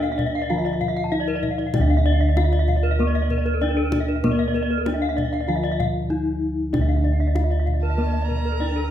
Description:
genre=Balinese gamelan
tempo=96 BPM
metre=4/4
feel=straight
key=D pelog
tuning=A4 = 444 Hz
part: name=gamelan-type bronze metallophone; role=melody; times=0.0-8.9 s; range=Bb3 to F4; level=-26 LUFS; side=left 2 dB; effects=none
part: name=gamelan-type bronze metallophone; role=accompaniment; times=0.0-8.9 s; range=D3 to Bb3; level=-32 LUFS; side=right 1 dB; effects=none
part: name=gamelan-type bronze metallophone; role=arpeggios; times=0.0-8.8 s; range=A4 to A5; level=-28 LUFS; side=left 5 dB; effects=none
part: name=gamelan-type bronze metallophone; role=arpeggios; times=0.0-8.9 s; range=Bb4 to F5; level=-30 LUFS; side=right 4 dB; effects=none
part: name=gamelan-type bossed gongs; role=bass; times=0.0-8.9 s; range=D2 to Bb4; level=-22 LUFS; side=right 1 dB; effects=none
part: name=kendang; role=percussion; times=0.0-8.8 s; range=none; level=-30 LUFS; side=left 2 dB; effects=none
part: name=warm erhu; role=second line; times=7.8-8.9 s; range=A5 to Bb5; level=-31 LUFS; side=right 4 dB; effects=none
room=moderate recital hall reverb, RT60 1.5 s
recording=minimal, uncompressed stereo recording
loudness=-19 LUFS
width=side -10 dB against mid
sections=0.0-8.9 A section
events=drum fill 6.1-6.7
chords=none

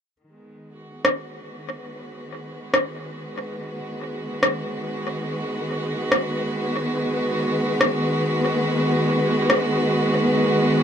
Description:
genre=ambient dub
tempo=71 BPM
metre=4/4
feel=straight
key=G# minor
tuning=A4 = 442 Hz
part: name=rich chamber string section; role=sustained chords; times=0.2-10.8 s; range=D#3 to B4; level=-22 LUFS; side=equal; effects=none
part: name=electronic rim click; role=drums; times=1.0-9.7 s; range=none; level=-21 LUFS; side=equal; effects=overdrive, dub echo
room=light reverb, small room ambience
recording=dark, warm production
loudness=-20 LUFS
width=side -8 dB against mid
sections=0.2-10.8 A section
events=fade-in on string section 0.2-10.8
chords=0.2 G#m7

